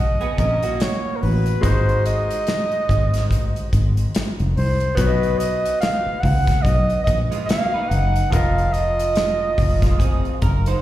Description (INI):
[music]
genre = lush 1970s-style soul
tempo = 72 BPM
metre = 4/4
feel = swing 58% on 16ths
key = unclear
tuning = A4 = 440 Hz
[part]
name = warm flugelhorn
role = melody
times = 0.0-10.4 s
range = A#4 to F#5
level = -23 LUFS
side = right 1 dB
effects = slapback echo, tape echo
[part]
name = bright grand piano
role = accompaniment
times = 0.0-10.8 s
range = B2 to D#5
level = -29 LUFS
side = left 2 dB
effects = slapback echo
[part]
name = fingered electric bass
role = bass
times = 0.0-10.8 s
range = F1 to Db2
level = -20 LUFS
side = equal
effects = none
[part]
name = electric guitar through a small old amp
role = riff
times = 0.2-1.6, 7.3-10.8 s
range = Ab3 to C5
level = -28 LUFS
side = right 5 dB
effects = analog chorus, slapback echo
[part]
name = modern studio drum kit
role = drums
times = 0.2-10.8 s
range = hi-hat, kick drum, snare drum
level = -23 LUFS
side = equal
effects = none
[sound]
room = studio reverb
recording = live gig heard through the venue's PA, recital hall reverb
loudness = -17 LUFS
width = side -14 dB against mid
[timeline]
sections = 0.0-10.8 A section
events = none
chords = 0.0 Bmaj7; 1.6 Ab7; 5.0 Bmaj7; 8.3 F7sus4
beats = 0.79 | 1.63 2.47 3.30 4.14 | 4.98 5.81 6.65 7.49 | 8.32 9.16 10.00